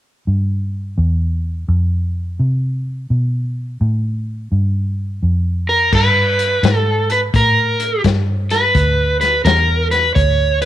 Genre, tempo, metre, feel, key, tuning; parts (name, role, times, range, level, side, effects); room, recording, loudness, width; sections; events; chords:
electric blues shuffle; 85 BPM; 4/4; swing 66% on 8ths; G mixolydian; A4 = 440 Hz
vintage muted fingered electric bass; bass; 0.3-10.7 s; D2 to C3; -17 LUFS; equal
overdriven slide guitar; melody; 5.7-10.7 s; Bb4 to C#5; -14 LUFS; right 1 dB
vintage drum kit; drums; 5.9-10.7 s; crash cymbal, hi-hat, kick drum, snare drum; -20 LUFS; left 4 dB
studio ambience; 1960s-style stereo; -14 LUFS; side -12 dB against mid
0.3-5.9 A section; 5.9-10.7 B section
0.3 G7; 5.9 Gadd9